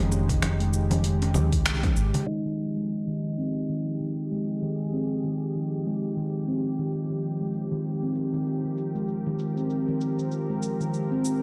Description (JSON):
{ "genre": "organic downtempo", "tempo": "97 BPM", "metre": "4/4", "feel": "swing 58% on 16ths", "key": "F minor", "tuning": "A4 = 440 Hz", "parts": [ { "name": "warm analog pad", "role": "sustained chords", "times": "0.0-11.4 s", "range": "Db3 to Bb4", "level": "-36 LUFS", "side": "equal", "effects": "chorus, sidechain pumping" }, { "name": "steel tongue drum", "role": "arpeggios", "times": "0.0-11.2 s", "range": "Eb3 to Db4", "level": "-30 LUFS", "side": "equal", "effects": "low-pass filter, analog delay" }, { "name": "mellow fretless electric bass", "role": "bass", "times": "0.0-2.1 s", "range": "F1 to Eb2", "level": "-28 LUFS", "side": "equal", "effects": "ensemble chorus, sidechain pumping" }, { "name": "bronze singing bowl", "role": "texture", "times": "0.0-11.4 s", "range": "C4 to Eb5", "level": "-43 LUFS", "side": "equal", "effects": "none" }, { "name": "afro-pop drum kit", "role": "drums", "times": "0.1-11.4 s", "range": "congas, finger snaps, hi-hat, shaker", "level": "-32 LUFS", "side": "equal", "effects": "studio reverb" }, { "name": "cajon", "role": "percussion", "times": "0.1-2.2 s", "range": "none", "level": "-35 LUFS", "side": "equal", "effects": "none" }, { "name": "electronic kick drum", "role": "drums", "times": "0.3-1.9 s", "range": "none", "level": "-30 LUFS", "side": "equal", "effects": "studio reverb" } ], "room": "light reverb, digital ambience", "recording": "dry, gritty hardware recording, transformer saturation, low-pass filter", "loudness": "-27 LUFS", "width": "mono", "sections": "0.0-2.3 A section; 2.3-11.4 B section", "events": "band accent 1.7-2.0; filter sweep on steel tongue drum 2.3-11.4; filter sweep on analog synth pad 2.3-11.4; filter sweep 2.3-11.4", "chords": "0.0 Dbadd9/F; 2.3 Fm7" }